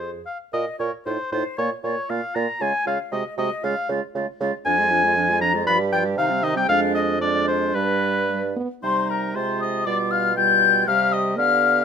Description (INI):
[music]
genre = quick classical-period movement for wind quintet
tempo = 117 BPM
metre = 2/4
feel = rubato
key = Bb minor, C minor from 4.7 s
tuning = A4 = 439 Hz
[part]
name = mellow silver concert flute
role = melody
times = 0.0-11.8 s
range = B4 to G6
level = -23 LUFS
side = left 8 dB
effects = none
[part]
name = clear oboe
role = second line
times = 0.0-11.8 s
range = Bb4 to B5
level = -23 LUFS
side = left 2 dB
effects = none
[part]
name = mellow clarinet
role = accompaniment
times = 0.0-11.8 s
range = C4 to Bb4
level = -29 LUFS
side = right 8 dB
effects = none
[part]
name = warm bassoon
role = bass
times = 0.0-11.8 s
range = F2 to D3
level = -27 LUFS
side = right 3 dB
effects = none
[part]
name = mellow French horn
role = accompaniment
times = 0.5-11.8 s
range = Eb3 to F4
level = -30 LUFS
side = right 2 dB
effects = none
[sound]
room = light reverb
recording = minimal, uncompressed stereo recording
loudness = -19 LUFS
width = side -7 dB against mid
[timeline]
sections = 0.5-8.8 A section; 8.8-11.8 B section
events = none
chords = 0.0 Fm; 0.5 Bbm; 1.1 F7/A; 1.6 Bb5; 2.6 Db; 3.1 Ab7/C; 3.6 Db; 4.7 Ddim/F; 5.7 G7; 6.2 Cm; 6.7 Ddim/F; 7.7 G; 8.8 Cm; 9.4 Ab6/C; 9.9 G7/B; 10.9 Cm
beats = | 0.53 1.05 | 1.57 2.09 | 2.60 3.12 | 3.63 4.15 | 4.66 5.16 | 5.67 6.17 | 6.69 7.21 | 7.75 8.29 | 8.83 9.35 | 9.86 10.36 | 10.87 11.37